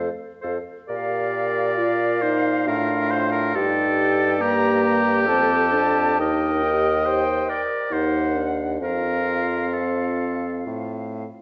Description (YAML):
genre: classical, slow romantic movement for wind quintet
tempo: 68 BPM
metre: 3/4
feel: uneven beats, rubato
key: Bb major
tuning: A4 = 440 Hz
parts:
  - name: silver concert flute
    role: melody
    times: 0.0-11.2 s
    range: F5 to Bb5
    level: -30 LUFS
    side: equal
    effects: none
  - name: clear oboe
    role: second line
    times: 0.0-10.7 s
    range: G4 to Eb5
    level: -27 LUFS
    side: equal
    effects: none
  - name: warm clarinet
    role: accompaniment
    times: 0.0-11.2 s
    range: F4 to C5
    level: -32 LUFS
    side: equal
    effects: none
  - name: warm bassoon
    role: bass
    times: 0.0-11.3 s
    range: Eb2 to Bb2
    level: -28 LUFS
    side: equal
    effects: none
  - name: dark French horn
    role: accompaniment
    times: 0.9-11.3 s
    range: Bb3 to G4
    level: -29 LUFS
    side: equal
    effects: none
room: wet recital hall reverb, RT60 1.6 s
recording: worn, warbling old tape, cassette tape, warbly pitch drift, nothing above 8.0 kHz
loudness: -22 LUFS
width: mono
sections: 0.9-11.4 A section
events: none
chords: 0.0 F; 0.9 Bb; 3.5 Eb/G; 6.2 Eb; 7.9 Cm7b5/Eb; 8.8 F